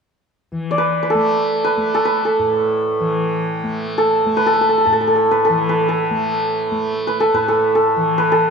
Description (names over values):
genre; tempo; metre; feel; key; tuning
indian classical, Hindustani; free time; none; none; unclear; A4 = 440 Hz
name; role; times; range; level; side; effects
tanpura; drone; 0.5-8.5 s; A2 to A3; -24 LUFS; left 2 dB; none
santur; melody; 0.7-8.5 s; A4 to D5; -15 LUFS; right 1 dB; none
room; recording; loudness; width
moderate concert hall reverb, RT60 2.0 s; none; -15 LUFS; side -5 dB against mid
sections
0.5-8.5 A section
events
none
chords
none